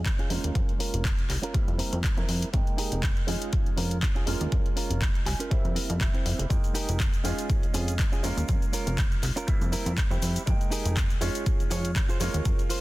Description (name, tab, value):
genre	filtered disco house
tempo	121 BPM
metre	4/4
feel	swing 55% on 16ths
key	unclear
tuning	A4 = 440 Hz
part	clear baby grand piano	accompaniment	0.0-12.8 s	G3 to G5	-36 LUFS	right 2 dB	phaser, vintage 12-bit sampler grit, sidechain pumping, low-pass filter
part	plucky analog bass	bass	0.0-12.5 s	F1 to F2	-29 LUFS	equal	tube saturation, sidechain pumping, low-pass filter
part	electronic kick drum	drums	0.1-12.6 s	none	-27 LUFS	equal	none
part	house drum kit	drums	0.1-12.8 s	handclaps, hi-hat, shaker	-34 LUFS	left 2 dB	none
part	direct-recorded clean electric guitar	riff	0.2-12.8 s	C4 to Ab5	-35 LUFS	right 3 dB	vintage 12-bit sampler grit, sidechain pumping, low-pass filter
room	little or no reverb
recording	dense, heavily limited modern master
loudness	-24 LUFS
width	side -18 dB against mid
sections	0.0-12.8 A section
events	filter sweep 0.0-12.8; clean electric guitar fill 5.0-6.5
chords	0.3 Db6; 1.5 C7/F; 2.5 Fm11; 3.3 Eb9sus4/F; 4.3 Db6; 5.5 C7/F; 6.5 Fm11; 7.2 Eb9sus4/F; 8.2 Db6; 9.5 C7/F; 10.5 Fm11; 11.2 Eb9sus4/F; 12.2 Db6